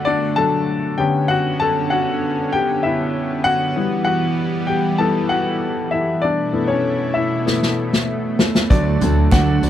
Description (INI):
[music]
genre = piano-driven pop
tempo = 97 BPM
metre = 4/4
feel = straight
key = D major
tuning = A4 = 440 Hz
[part]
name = warm baby grand piano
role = accompaniment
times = 0.0-9.7 s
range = D3 to A5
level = -19 LUFS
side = left 4 dB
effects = none
[part]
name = lush unison pad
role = sustained chords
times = 0.0-9.7 s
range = B2 to F#4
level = -23 LUFS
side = right 3 dB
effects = chorus
[part]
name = unplugged drum kit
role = drums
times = 7.5-9.7 s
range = hi-hat, kick drum, snare drum, toms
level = -17 LUFS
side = equal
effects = none
[part]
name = picked steel-string acoustic guitar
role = riff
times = 8.7-9.7 s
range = D3 to D5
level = -20 LUFS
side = right 7 dB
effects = none
[part]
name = modern bright picked electric bass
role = bass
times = 8.7-9.7 s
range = D2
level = -18 LUFS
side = equal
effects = none
[part]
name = group handclap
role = percussion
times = 9.3-9.5 s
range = none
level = -32 LUFS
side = right 10 dB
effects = none
[sound]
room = light reverb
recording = none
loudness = -16 LUFS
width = side -11 dB against mid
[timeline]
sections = 0.0-9.7 A section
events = grand piano solo 0.0-9.7; drum fill 7.5-8.7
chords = 0.0 D; 1.0 Bmadd9; 3.8 Em; 6.2 Asus2; 8.7 D